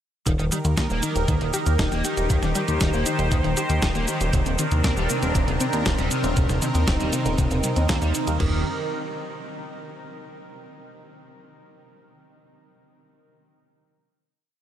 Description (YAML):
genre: synthwave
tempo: 118 BPM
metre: 4/4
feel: straight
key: Eb major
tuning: A4 = 439 Hz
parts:
  - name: phased analog pad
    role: sustained chords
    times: 0.5-8.6 s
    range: Eb3 to C5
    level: -27 LUFS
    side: equal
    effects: phaser, chorus, sidechain pumping
  - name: wide unison pluck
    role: arpeggios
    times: 0.3-8.6 s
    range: C3 to G4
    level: -30 LUFS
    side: left 2 dB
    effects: analog delay
  - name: crunchy overdriven guitar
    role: riff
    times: 0.3-8.6 s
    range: C3 to Eb4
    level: -30 LUFS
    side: right 1 dB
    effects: ensemble chorus, analog delay
  - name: chorused synth bass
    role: bass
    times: 0.3-8.6 s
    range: Eb1 to Eb2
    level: -24 LUFS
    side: equal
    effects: none
  - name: clean 12-bit digital drum machine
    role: drums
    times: 0.3-8.5 s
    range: crash cymbal, kick drum, toms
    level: -25 LUFS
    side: equal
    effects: none
  - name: clean 12-bit digital drum machine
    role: drums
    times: 0.3-8.4 s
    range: hi-hat, shaker, snare drum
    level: -29 LUFS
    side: equal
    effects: none
room: moderate huge ambient reverb, RT60 7.9 s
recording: dreamy mix soaked in reverb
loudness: -20 LUFS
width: side -10 dB against mid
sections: 0.3-8.4 chorus; 8.4-10.4 final chord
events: none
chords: 0.3 Eb; 4.3 Cm7/Eb; 8.4 N.C.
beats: | 0.27 0.78 1.28 1.79 | 2.30 2.81 3.32 3.83 | 4.33 4.84 5.35 5.86 | 6.37 6.88 7.39 7.89 | 8.40